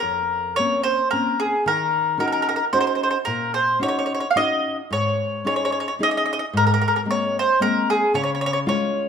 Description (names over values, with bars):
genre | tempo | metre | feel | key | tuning
italian folk, Italian serenade | 111 BPM | 3/4 | swing 55% on 8ths, rubato | unclear | A4 = 442 Hz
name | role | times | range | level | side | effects
mandolin | melody | 0.0-9.1 s | Ab4 to F5 | -20 LUFS | equal | none
nylon-string guitar | accompaniment | 0.0-9.1 s | F2 to Ab4 | -25 LUFS | left 2 dB | none
room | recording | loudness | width
moderate recital hall reverb, RT60 1.4 s | minimal, uncompressed stereo recording | -19 LUFS | side -7 dB against mid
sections
0.0-9.1 A section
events
none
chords
0.0 Bbmadd9; 1.7 Ebm7; 4.9 Absus4; 6.5 Abadd9; 8.1 Db